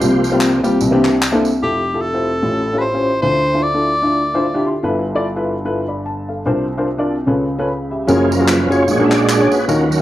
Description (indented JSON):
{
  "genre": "uptempo gospel",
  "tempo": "149 BPM",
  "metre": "4/4",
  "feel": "swing 57% on 8ths",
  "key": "F major",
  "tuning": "A4 = 440 Hz",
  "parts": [
    { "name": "warm upright piano", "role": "accompaniment", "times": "0.0-10.0 s", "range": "F1 to C6", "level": "-16 LUFS", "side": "left 1 dB", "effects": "none" },
    { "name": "tonewheel organ", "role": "sustained chords", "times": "0.0-1.1, 8.1-10.0 s", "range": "F#2 to E5", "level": "-16 LUFS", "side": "right 2 dB", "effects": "fast rotary speaker, overdrive, chorus vibrato" },
    { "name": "tambourine and handclaps", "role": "percussion", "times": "0.0-1.5, 8.1-10.0 s", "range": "none", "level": "-23 LUFS", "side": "left 1 dB", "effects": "none" },
    { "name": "bright tenor saxophone", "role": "melody", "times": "1.6-4.7 s", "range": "G4 to D5", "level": "-18 LUFS", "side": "equal", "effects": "none" }
  ],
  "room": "moderate echo chamber reverb, RT60 1.3 s, small room ambience",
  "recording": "dark, warm production",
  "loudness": "-14 LUFS",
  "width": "side -14 dB against mid",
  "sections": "0.0-1.6 A section; 1.6-8.1 B section; 8.1-10.0 A section",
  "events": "tonewheel organ solo 0.0-1.6, 8.1-10.0; upright piano fill 4.2-4.8",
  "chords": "0.0 C7sus4; 0.8 C9; 1.6 Fmaj9; 2.4 A7alt; 3.2 Dm9; 4.8 G13; 6.5 C9sus4; 7.3 Dbaug7; 8.1 F#maj9; 8.9 A#7alt"
}